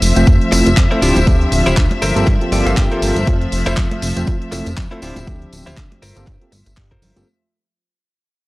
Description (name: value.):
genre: filtered disco house.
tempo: 120 BPM.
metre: 4/4.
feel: swing 57% on 16ths.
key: unclear.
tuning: A4 = 443 Hz.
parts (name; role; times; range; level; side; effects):
barky tine electric piano; accompaniment; 0.0-7.3 s; F3 to E5; -20 LUFS; right 1 dB; overdrive, phaser, sidechain pumping.
warm studio string section; sustained chords; 0.0-7.3 s; F3 to E5; -22 LUFS; left 2 dB; sidechain pumping.
direct-recorded clean electric guitar; riff; 0.0-7.3 s; E4 to A5; -23 LUFS; left 1 dB; sidechain pumping.
plucky analog bass; bass; 0.0-7.2 s; D1 to G2; -18 LUFS; equal; transformer saturation, sidechain pumping.
house drum kit; drums; 0.0-7.3 s; handclaps, hi-hat; -25 LUFS; right 1 dB; sidechain pumping on hats.
tambourine and congas; percussion; 0.0-7.3 s; none; -26 LUFS; equal; sidechain pumping on perc.
electronic kick drum; drums; 0.3-7.0 s; none; -15 LUFS; equal; none.
room: little or no reverb.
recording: dry, gritty hardware recording, cassette tape.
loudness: -12 LUFS.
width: side -20 dB against mid.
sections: 0.0-7.3 A section.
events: drop 0.0-7.3; fade-out 0.0-7.3; clean electric guitar fill 2.3-3.3.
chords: 0.0 Fmaj7; 1.0 Dm11; 2.0 Gm11; 3.3 Fmaj7; 5.0 Dm11; 6.0 Gm11.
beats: 0.27 0.77 | 1.27 1.77 2.27 2.77 | 3.27 3.77 4.27 4.77 | 5.27 5.77 6.27 6.77.